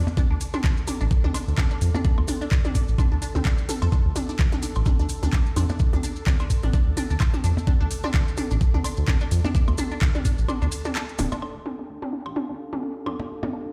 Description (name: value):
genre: minimal techno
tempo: 128 BPM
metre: 4/4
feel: swing 56% on 16ths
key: D minor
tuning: A4 = 440 Hz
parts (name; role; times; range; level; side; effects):
- round analog bass; bass; 0.0-13.5 s; D1 to F2; -25 LUFS; equal; sidechain pumping, high-pass filter
- bubbling stepped-filter texture; texture; 0.0-13.7 s; G4 to A4; -44 LUFS; equal; chorus, built-in reverb, sidechain pumping
- electronic percussion blips and toms; percussion; 0.1-13.5 s; none; -33 LUFS; equal; dub echo
- maracas; percussion; 0.1-11.4 s; none; -42 LUFS; equal; none
- resonant blip pluck; riff; 0.2-13.6 s; C4 to A4; -37 LUFS; equal; phaser, lush chorus, sidechain pumping, dub echo
- electronic kick drum; drums; 0.2-10.4 s; none; -24 LUFS; equal; overdrive
- garage drum kit; drums; 0.4-11.3 s; handclaps, hi-hat; -35 LUFS; equal; overdrive
- warbly tape-like pad; texture; 11.9-13.7 s; D4 to F5; -39 LUFS; equal; chorus, built-in reverb, sidechain pumping
room: digital ambience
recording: played on a big sound system in a bare room, stone room reverb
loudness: -24 LUFS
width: mono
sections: 0.0-11.4 A section; 11.4-13.7 B section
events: break 10.5-11.4; filter sweep on synth arpeggio sound 11.4-13.7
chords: 0.0 D5; 11.4 Dm